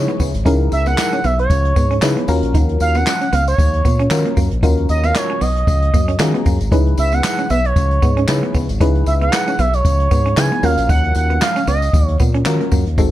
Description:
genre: early-eighties boogie funk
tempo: 115 BPM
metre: 4/4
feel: swing 56% on 16ths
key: unclear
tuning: A4 = 440 Hz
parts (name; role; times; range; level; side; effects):
- expressive synth lead; melody; 0.0-12.2 s; C#5 to G#5; -20 LUFS; right 2 dB; chorus, slapback echo
- FM electric piano; accompaniment; 0.0-13.1 s; B#3 to A#5; -22 LUFS; left 3 dB; chorus
- fingered electric bass with an envelope filter; bass; 0.0-13.1 s; G#1 to D#3; -18 LUFS; equal; none
- semi-hollow electric guitar; riff; 0.1-13.1 s; G#3 to D#4; -25 LUFS; right 3 dB; lush chorus
- jazz brush drum kit; drums; 0.1-13.1 s; handclaps, hi-hat, kick drum, snare drum; -18 LUFS; equal; none
- tambourine; percussion; 0.2-13.1 s; none; -33 LUFS; left 6 dB; none
room: studio ambience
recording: dark, warm production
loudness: -13 LUFS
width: side -14 dB against mid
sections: 0.0-13.1 A section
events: FM electric piano fill 5.9-6.7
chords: 0.0 C#m9; 2.3 D#m9; 6.7 C#m9; 10.6 D#m9

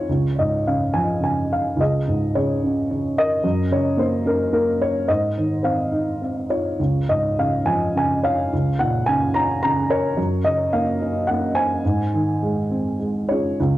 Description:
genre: classical, lyrical solo piano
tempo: 99-112 BPM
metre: 3/4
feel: rubato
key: Db major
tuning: A4 = 440 Hz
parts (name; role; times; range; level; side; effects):
- dark upright piano; solo; 0.0-13.8 s; Db2 to Bb5; -18 LUFS; equal; none
room: moderate small room reverb, RT60 0.6 s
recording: cassette tape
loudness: -18 LUFS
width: side -15 dB against mid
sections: 0.1-13.6 A section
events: none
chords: 0.1 Db; 1.8 Bbm7/Db; 3.4 Gb; 5.1 Ab; 6.8 Db; 8.5 Bbm/Db; 10.2 Gb; 11.8 Ab

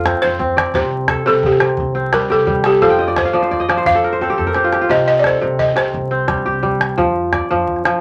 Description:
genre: west african traditional, West African string and xylophone music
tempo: 116 BPM (dotted quarters)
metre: 12/8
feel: straight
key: C dorian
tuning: A4 = 440 Hz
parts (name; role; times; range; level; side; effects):
- kora; arpeggios; 0.0-8.0 s; C3 to G5; -19 LUFS; equal; none
- upright bass; bass; 0.0-7.9 s; C2 to F2; -28 LUFS; equal; none
- calabash; percussion; 0.1-8.0 s; none; -23 LUFS; equal; none
- balafon; melody; 0.2-6.6 s; G4 to F5; -18 LUFS; equal; none
room: wet club reverb, RT60 0.5 s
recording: vinyl crackle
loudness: -16 LUFS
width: mono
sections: 0.0-8.0 A section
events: balafon solo 0.0-8.0; kora fill 2.8-4.9; drum fill 4.2-4.9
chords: 0.0 F5; 0.7 C5; 2.8 F; 4.9 C5; 7.0 F5

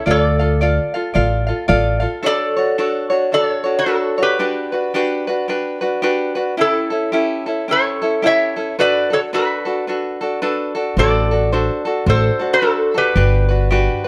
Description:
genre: Hawaiian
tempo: 110 BPM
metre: 4/4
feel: swing 60% on 8ths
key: D major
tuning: A4 = 440 Hz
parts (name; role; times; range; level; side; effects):
- metal-body resonator slide guitar; melody; 0.0-14.1 s; E4 to E5; -20 LUFS; equal; none
- tenor ukulele; accompaniment; 0.0-14.1 s; C#4 to F5; -21 LUFS; equal; none
- upright bass; bass; 0.1-2.0, 11.0-13.9 s; G1 to D2; -19 LUFS; equal; none
room: light reverb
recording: none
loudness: -18 LUFS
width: mono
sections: 0.0-2.2 A section; 2.2-14.1 B section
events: none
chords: 0.1 Dm; 2.2 Dmaj7; 4.4 Gmaj7; 6.6 A7; 8.8 Bm7; 11.0 D7/A; 13.2 Gmaj7

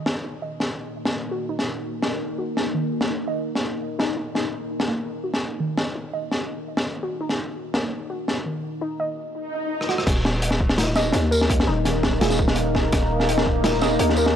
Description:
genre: half-time drum and bass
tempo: 168 BPM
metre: 4/4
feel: half-time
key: Eb minor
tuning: A4 = 440 Hz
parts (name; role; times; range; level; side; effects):
- deep dark ambient pad; sustained chords; 0.0-14.4 s; Bb3 to Bb4; -28 LUFS; left 1 dB; chorus, built-in reverb, sidechain pumping
- warbly dusty pluck; arpeggios; 0.0-14.4 s; Eb3 to Eb5; -29 LUFS; right 1 dB; chorus, cassette tape, tape echo
- crunchy breakbeat drum kit; drums; 0.1-14.3 s; crash cymbal, hi-hat, rim click, snare drum, tambourine; -24 LUFS; equal; none
- swell; sound effects; 9.4-10.1 s; none; -30 LUFS; left 1 dB; none
- growling 808-style bass; bass; 10.1-14.4 s; Eb1 to Eb2; -24 LUFS; equal; none
- electronic kick drum; drums; 10.1-13.5 s; none; -23 LUFS; equal; none
room: small room ambience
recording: dry, gritty hardware recording, transformer saturation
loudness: -21 LUFS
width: side -9 dB against mid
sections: 0.0-10.1 A section; 10.1-14.4 B section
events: filter sweep on ambient pad 0.0-10.1; swell 9.4-10.1; drum fill 9.8; drop 10.1-14.4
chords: 0.0 Eb5

